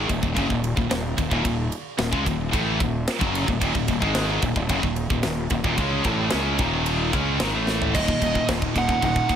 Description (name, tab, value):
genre	heavy metal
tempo	111 BPM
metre	4/4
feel	straight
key	Eb phrygian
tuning	A4 = 440 Hz
part	biting overdriven guitar	riff	0.0-9.4 s	Eb2 to Db4	-30 LUFS	equal	none
part	high-gain distorted guitar	riff	0.0-9.4 s	Eb2 to Db4	-28 LUFS	left 9 dB	distortion
part	scooped high-gain guitar	riff	0.0-9.4 s	Eb2 to Db4	-28 LUFS	right 10 dB	distortion
part	fuzz fingered electric bass	bass	0.0-9.4 s	Eb1 to Db2	-27 LUFS	equal	overdrive
part	tight metal drum kit	drums	0.1-9.4 s	crash cymbal, kick drum, ride cymbal, snare drum, toms	-26 LUFS	equal	none
part	high-gain lead guitar	melody	8.0-9.4 s	Eb5 to Gb5	-24 LUFS	right 2 dB	distortion
part	high-gain lead guitar	second line	8.0-9.4 s	Bb3 to Eb4	-31 LUFS	right 6 dB	distortion, digital delay
room	light reverb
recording	none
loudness	-20 LUFS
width	side -9 dB against mid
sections	0.0-7.9 A section; 7.9-9.4 B section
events	drum fill 7.7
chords	0.0 Ebm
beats	0.36 0.91 | 1.45 1.99 2.53 3.07 | 3.61 4.15 4.70 5.24 | 5.78 6.32 6.86 7.40 | 7.94 8.48 9.02